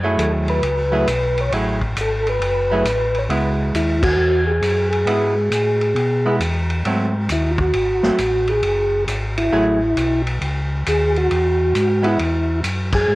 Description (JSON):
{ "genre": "soul jazz organ trio", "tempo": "135 BPM", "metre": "4/4", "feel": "swing 66% on 8ths", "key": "C# minor", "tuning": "A4 = 439 Hz", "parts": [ { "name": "archtop guitar, miked and amplified", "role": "accompaniment", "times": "0.0-12.2 s", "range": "F#3 to G#4", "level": "-22 LUFS", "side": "right 1 dB", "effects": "none" }, { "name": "mellow tonewheel organ", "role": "bass", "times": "0.0-13.2 s", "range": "F#1 to B2", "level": "-21 LUFS", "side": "equal", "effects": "slow rotary speaker" }, { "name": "percussive tonewheel organ", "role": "melody", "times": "0.2-13.2 s", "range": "E4 to C#5", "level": "-19 LUFS", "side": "equal", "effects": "slow rotary speaker, chorus vibrato" }, { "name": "vintage drum kit", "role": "drums", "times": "0.2-13.0 s", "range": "crash cymbal, hi-hat, kick drum, ride cymbal, snare drum", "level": "-25 LUFS", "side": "equal", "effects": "none" } ], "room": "light reverb", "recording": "worn, warbling old tape, cassette tape, warbly pitch drift", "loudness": "-16 LUFS", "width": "side -19 dB against mid", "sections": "0.0-13.2 A section", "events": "band accent 4.0, 12.9", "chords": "0.0 F#m9; 3.3 C#m7; 6.9 G#7b9; 8.6 F#m9; 10.4 C#m" }